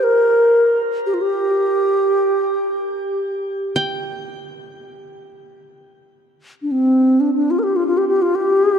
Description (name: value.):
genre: world meditative, free-time meditation music.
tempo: free time.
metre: none.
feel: none.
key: G minor pentatonic.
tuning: A4 = 440 Hz.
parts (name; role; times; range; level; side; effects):
bright low xiao; melody; 0.0-8.8 s; C4 to Bb4; -16 LUFS; equal; shimmer reverb, tape echo.
qanun; texture; 0.0-8.8 s; D5 to G5; -24 LUFS; right 1 dB; shimmer reverb.
room: wet cathedral reverb, RT60 4.6 s.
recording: dark, warm production.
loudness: -15 LUFS.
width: side -8 dB against mid.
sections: 0.0-8.8 A section.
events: none.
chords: none.